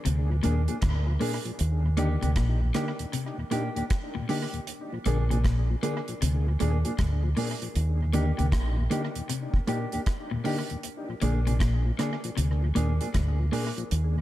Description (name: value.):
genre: roots reggae.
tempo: 78 BPM.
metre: 4/4.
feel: swing 64% on 16ths.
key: Bb mixolydian.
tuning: A4 = 440 Hz.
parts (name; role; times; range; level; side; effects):
electric guitar at the edge of break-up; arpeggios; 0.1-13.7 s; Ab2 to D3; -33 LUFS; left 4 dB; spring reverb.
deep dub fingered electric bass; bass; 0.1-14.2 s; Bb1 to Eb2; -25 LUFS; equal; none.
deep reggae drum kit; drums; 0.1-14.1 s; hi-hat, kick drum, rim click; -31 LUFS; equal; analog delay.
mellow tonewheel organ; accompaniment; 0.3-14.2 s; Eb2 to Ab4; -36 LUFS; left 3 dB; chorus vibrato, slow rotary speaker, analog delay.
mellow electric guitar; accompaniment; 0.4-13.7 s; Bb3 to Ab4; -33 LUFS; right 3 dB; spring reverb, dub echo.
room: light reverb, studio reverb.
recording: echo-heavy mix.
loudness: -25 LUFS.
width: side -14 dB against mid.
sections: 0.0-14.2 A section.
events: none.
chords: 0.0 Bb7; 1.6 Ebmaj7; 4.7 Bb7; 7.8 Ebmaj7; 10.8 Bb7.